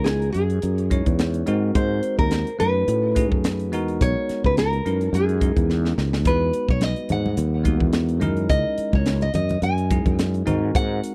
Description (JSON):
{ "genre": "electric jazz fusion", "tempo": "107 BPM", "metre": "4/4", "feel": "swing 54% on 16ths", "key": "F# mixolydian", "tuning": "A4 = 440 Hz", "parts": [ { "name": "nylon-string guitar", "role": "melody", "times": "0.0-11.1 s", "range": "G#4 to G#5", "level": "-28 LUFS", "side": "equal", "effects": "tape echo" }, { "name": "bell-like tine electric piano", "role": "accompaniment", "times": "0.0-11.1 s", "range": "G#3 to C#5", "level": "-30 LUFS", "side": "equal", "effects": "none" }, { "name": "sustaining fretless electric bass", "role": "bass", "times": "0.0-11.0 s", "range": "B1 to A2", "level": "-25 LUFS", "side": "equal", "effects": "none" }, { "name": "crisp fusion drum kit", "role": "drums", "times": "0.1-11.1 s", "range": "hi-hat, kick drum, snare drum", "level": "-26 LUFS", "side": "equal", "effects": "none" }, { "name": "congas", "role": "percussion", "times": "6.7-10.6 s", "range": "none", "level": "-32 LUFS", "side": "equal", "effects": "none" } ], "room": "little or no reverb", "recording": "dry, close 1970s-style studio recording", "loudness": "-21 LUFS", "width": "mono", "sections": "0.0-11.1 A section", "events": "drum fill 5.7-6.3", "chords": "0.0 F#13; 1.5 G#7; 2.6 B9/F#; 3.7 Emaj9#11; 4.9 F#13; 6.3 Emaj9#11; 8.2 F#13; 10.5 G#7", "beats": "0.07 0.64 1.20 | 1.76 2.32 2.88 3.44 | 4.01 4.57 5.13 5.69 | 6.26 6.82 7.38 7.94 | 8.50 9.07 9.63 10.19 | 10.75" }